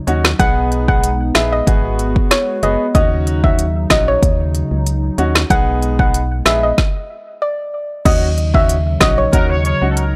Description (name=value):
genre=dancehall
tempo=94 BPM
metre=4/4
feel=straight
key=Eb minor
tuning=A4 = 441 Hz
part: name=hollow soft pad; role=sustained chords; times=0.0-10.2 s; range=Db3 to Gb4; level=-27 LUFS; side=equal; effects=chorus, sidechain pumping
part: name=clear baby grand piano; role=accompaniment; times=0.1-10.0 s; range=B3 to G#4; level=-24 LUFS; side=equal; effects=sidechain pumping
part: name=organ-like FM bass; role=bass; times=0.1-10.2 s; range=Gb1 to Eb2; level=-20 LUFS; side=equal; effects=none
part: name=afro-pop drum kit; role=drums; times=0.1-10.1 s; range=crash cymbal, hi-hat, kick drum, rim click, snare drum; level=-18 LUFS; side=equal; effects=none
part: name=soft round pluck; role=melody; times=0.4-9.3 s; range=Db5 to F#5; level=-21 LUFS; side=equal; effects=chorus, analog delay
part: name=warm horn section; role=second line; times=9.3-10.2 s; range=A4 to Db5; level=-22 LUFS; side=equal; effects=analog delay
room=digital ambience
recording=dry, gritty hardware recording, transformer saturation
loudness=-15 LUFS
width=mono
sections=0.0-8.1 A section; 8.1-10.2 B section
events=stop 6.8-8.1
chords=0.4 B6; 1.7 Abm7; 2.9 Ebm7; 5.5 B6; 6.8 N.C.; 8.1 Ebm7